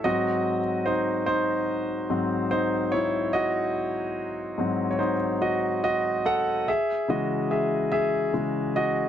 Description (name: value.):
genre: pop.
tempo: 72 BPM.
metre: 4/4.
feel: straight.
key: unclear.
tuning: A4 = 440 Hz.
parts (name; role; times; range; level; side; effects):
clear concert grand piano; solo; 0.0-9.1 s; G#2 to F#5; -23 LUFS; equal; none.
room: light reverb.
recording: dry, close 1970s-style studio recording.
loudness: -23 LUFS.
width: side -9 dB against mid.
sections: 0.0-6.7 A section; 6.7-9.1 B section.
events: grand piano solo 0.0-6.7, 6.7-9.1.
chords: 0.1 G#7; 6.7 C#m.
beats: | 0.05 0.87 1.70 2.52 | 3.35 4.17 5.00 5.84 | 6.68 7.51 8.35.